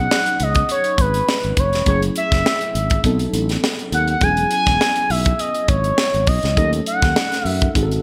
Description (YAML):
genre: polished 1980s jazz-funk pop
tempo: 102 BPM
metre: 4/4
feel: swing 54% on 16ths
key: B major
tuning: A4 = 440 Hz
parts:
  - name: expressive synth lead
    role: melody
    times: 0.0-7.7 s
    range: B4 to G#5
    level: -22 LUFS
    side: equal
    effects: chorus
  - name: mellow tine electric piano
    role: accompaniment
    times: 0.0-8.0 s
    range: F#3 to A4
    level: -28 LUFS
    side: equal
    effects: analog chorus
  - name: fingered electric bass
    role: bass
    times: 0.0-8.0 s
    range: E1 to F#2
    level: -24 LUFS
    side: equal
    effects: none
  - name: tight funk drum kit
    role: drums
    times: 0.1-8.0 s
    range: hi-hat, kick drum, snare drum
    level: -23 LUFS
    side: equal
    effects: none
room: moderate plate reverb, RT60 2.1 s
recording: bright 1980s-style digital production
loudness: -18 LUFS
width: mono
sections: 0.0-8.0 A section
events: none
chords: 0.0 B69; 1.9 F#m9; 3.0 B7b9; 4.2 E69; 6.6 D#m7b5